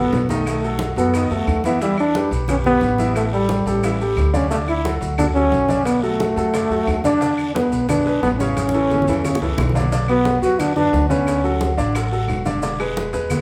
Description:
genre	latin, salsa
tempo	178 BPM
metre	4/4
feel	straight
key	unclear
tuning	A4 = 440 Hz
part	mellow trombone	melody	0.0-11.7 s	G3 to F#4	-21 LUFS	equal	none
part	bright upright piano	accompaniment	0.0-13.4 s	C#3 to E5	-26 LUFS	equal	none
part	upright bass	bass	0.0-13.4 s	E1 to F#2	-26 LUFS	equal	none
part	bongos	percussion	0.1-13.4 s	none	-36 LUFS	equal	none
part	congas	percussion	0.1-13.4 s	none	-30 LUFS	equal	none
part	guiro	percussion	0.1-13.4 s	none	-43 LUFS	equal	none
part	maracas	percussion	0.1-13.4 s	none	-43 LUFS	equal	none
part	claves	percussion	0.5-13.4 s	none	-39 LUFS	equal	none
room	wet large studio reverb, RT60 1.2 s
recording	band playing live in one room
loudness	-19 LUFS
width	mono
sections	0.0-9.9 A section; 9.9-13.4 B section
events	drum fill 8.6-9.9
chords	0.5 B7; 1.8 Em7; 3.2 A5; 4.5 Dmaj7; 5.9 Bm7; 7.2 E7; 8.6 Aadd9; 9.9 Bm; 11.3 Dmaj7; 12.6 E7

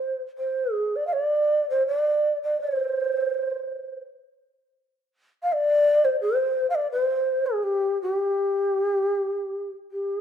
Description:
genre	japanese traditional, Japanese chamber music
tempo	82 BPM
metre	4/4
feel	rubato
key	G in sen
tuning	A4 = 441 Hz
part	mellow hollow long shakuhachi	solo	0.0-10.2 s	G4 to F5	-22 LUFS	equal	none
room	moderate recital hall reverb, RT60 1.6 s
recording	minimal, uncompressed stereo recording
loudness	-22 LUFS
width	side -9 dB against mid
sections	0.0-10.2 A section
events	none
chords	none

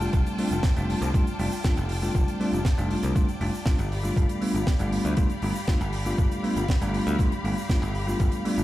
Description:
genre	nu-disco, nu disco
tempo	119 BPM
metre	4/4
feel	straight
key	G mixolydian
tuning	A4 = 440 Hz
part	bell-like tine electric piano	accompaniment	0.0-8.6 s	G3 to F4	-28 LUFS	equal	phaser, sidechain pumping, digital delay
part	clear studio string section	sustained chords	0.0-8.6 s	F4 to B5	-34 LUFS	left 2 dB	sidechain pumping
part	modern bright picked electric bass	bass	0.0-8.6 s	F1 to D2	-28 LUFS	equal	tube saturation
part	tight funk drum kit	drums	0.0-8.6 s	hi-hat, shaker, snare drum	-36 LUFS	right 1 dB	studio reverb
part	electronic kick drum	drums	0.1-8.3 s	none	-24 LUFS	equal	studio reverb
room	little or no reverb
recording	played on a big sound system in a bare room, stone room reverb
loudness	-23 LUFS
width	side -15 dB against mid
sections	0.0-8.6 A section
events	none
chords	0.0 F69; 3.9 G7

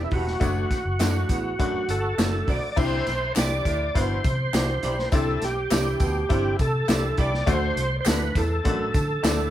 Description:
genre	uptempo 1960s-style soul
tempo	102 BPM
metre	4/4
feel	straight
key	unclear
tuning	A4 = 440 Hz
part	overdriven tonewheel organ	melody	0.0-9.5 s	E4 to D5	-27 LUFS	right 1 dB	chorus vibrato, slow rotary speaker, tape echo
part	bright upright piano	accompaniment	0.0-9.5 s	A3 to A4	-30 LUFS	left 4 dB	none
part	vintage muted fingered electric bass	bass	0.0-9.5 s	E1 to D3	-27 LUFS	equal	none
part	warm baritone saxophone	riff	0.1-8.9 s	D2 to C3	-33 LUFS	right 3 dB	none
part	electric guitar through a small old amp	stabs	0.1-9.4 s	D4 to D5	-33 LUFS	right 2 dB	none
part	crunchy breakbeat drum kit	drums	0.1-9.4 s	crash cymbal, hi-hat, kick drum, snare drum	-26 LUFS	equal	none
part	tambourine and handclaps	percussion	0.4-9.4 s	none	-37 LUFS	equal	none
room	moderate studio reverb, RT60 0.5 s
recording	band playing live in one room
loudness	-21 LUFS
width	side -12 dB against mid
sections	0.0-2.8 A section; 2.8-9.5 B section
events	none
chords	0.4 D/F#; 2.8 Cadd9; 7.5 D

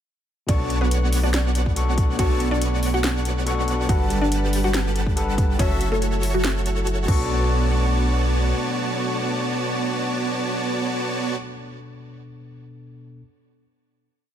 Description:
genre	future bass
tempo	141 BPM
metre	4/4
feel	half-time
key	B minor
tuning	A4 = 440 Hz
part	mallet-like synth pluck	melody	0.5-11.4 s	F#3 to F#5	-28 LUFS	equal	analog chorus, sidechain pumping, ping-pong delay
part	overdriven tine electric piano	accompaniment	0.5-13.2 s	B2 to C#6	-29 LUFS	left 3 dB	sidechain pumping, tape echo
part	airy breathy pad	sustained chords	1.0-11.4 s	B2 to C#6	-33 LUFS	right 2 dB	none
part	dense compressed supersaw	riff	0.5-11.4 s	G3 to A5	-26 LUFS	right 1 dB	sidechain pumping, tape echo
part	long sustained 808-style bass	bass	0.5-8.5 s	F#1 to B1	-23 LUFS	equal	sidechain pumping
part	electronic kick drum	drums	0.5-7.2 s	none	-22 LUFS	equal	small room ambience
part	trap drum kit	drums	0.5-7.2 s	crash cymbal, hi-hat, snare drum	-28 LUFS	equal	small room ambience
room	little or no reverb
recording	none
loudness	-20 LUFS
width	side -10 dB against mid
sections	0.5-7.3 drop; 7.3-10.7 final hit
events	drop 0.5-7.3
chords	0.5 Bm9; 3.9 Gmaj9; 5.6 F#m7; 7.1 Bm9

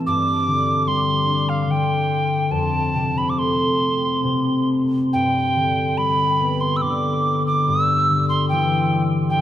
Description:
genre	celtic folk, Celtic slow air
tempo	67-75 BPM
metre	3/4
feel	rubato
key	G mixolydian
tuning	A4 = 439 Hz
part	concert harp	accompaniment	0.0-9.4 s	F2 to D4	-20 LUFS	left 2 dB	none
part	wooden whistle	melody	0.1-9.4 s	F5 to E6	-20 LUFS	right 1 dB	slapback echo
room	moderate cathedral reverb, RT60 5.8 s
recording	none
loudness	-17 LUFS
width	side -11 dB against mid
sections	0.0-9.4 A section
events	none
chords	0.1 Gsus4; 2.5 F; 5.1 G; 7.7 Cadd9/G (rootless)

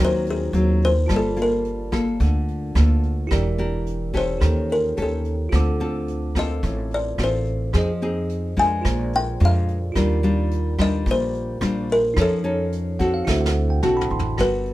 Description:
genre	bossa nova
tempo	108 BPM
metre	4/4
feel	straight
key	unclear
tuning	A4 = 439 Hz
part	buzzing kalimba	melody	0.0-14.7 s	Ab4 to Ab5	-24 LUFS	left 1 dB	none
part	bell-like tine electric piano	accompaniment	0.0-14.4 s	Eb4 to D6	-30 LUFS	right 4 dB	none
part	nylon-string guitar	accompaniment	0.0-14.7 s	A2 to Bb4	-25 LUFS	left 2 dB	none
part	upright bass	bass	0.0-14.7 s	E1 to F2	-23 LUFS	equal	none
part	vintage brush drum kit	drums	0.3-14.7 s	hi-hat, kick drum, rim click, snare drum, toms	-26 LUFS	equal	none
room	light reverb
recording	minimal, uncompressed stereo recording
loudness	-19 LUFS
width	side -16 dB against mid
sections	0.0-14.4 A section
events	kalimba solo 0.0-14.4; tine electric piano fill 12.7-14.4; drum fill 13.3-14.4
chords	0.0 Ab13; 1.1 Gm9; 3.3 Em7b5; 4.4 Eb7#11; 5.5 Dm7; 7.7 Fm7; 8.8 Bb7; 10.0 Ebmaj9; 12.2 F7b13; 13.3 D7

